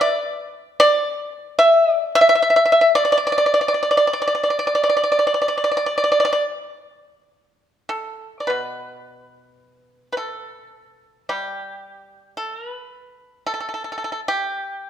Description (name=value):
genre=chinese traditional, Chinese solo plucked strings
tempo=49-56 BPM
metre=4/4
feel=rubato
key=D zhi mode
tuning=A4 = 442 Hz
part: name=pipa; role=solo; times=0.0-14.9 s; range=B2 to E5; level=-16 LUFS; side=equal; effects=none
room=moderate scoring stage reverb, RT60 1.5 s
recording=minimal, uncompressed stereo recording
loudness=-16 LUFS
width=side -10 dB against mid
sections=0.0-7.9 A section; 7.9-14.9 B section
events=none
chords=none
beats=0.02 1.09 2.18 | 3.26 4.37 5.53 6.72 | 7.93 9.07 10.19 11.31 | 12.41 13.50 14.57